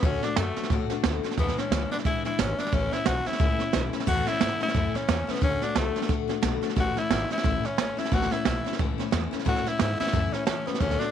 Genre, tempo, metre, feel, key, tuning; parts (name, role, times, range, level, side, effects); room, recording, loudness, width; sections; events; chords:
rockabilly; 178 BPM; 4/4; swing 59% on 8ths; A major; A4 = 440 Hz
raspy tenor saxophone; melody; 0.0-11.1 s; A3 to F#4; -29 LUFS; left 1 dB
picked steel-string acoustic guitar; accompaniment; 0.0-11.1 s; E2 to F#4; -31 LUFS; left 13 dB
upright bass; bass; 0.0-11.0 s; G#1 to A2; -30 LUFS; left 1 dB
jazz brush drum kit; drums; 0.0-11.0 s; crash cymbal, hi-hat, kick drum, snare drum; -27 LUFS; right 4 dB
light reverb, small room ambience; 1960s-style stereo; -24 LUFS; side -9 dB against mid
0.0-4.1 A section; 4.1-11.1 A section
0.0 D; 1.4 E7; 2.7 A; 5.4 D; 6.8 A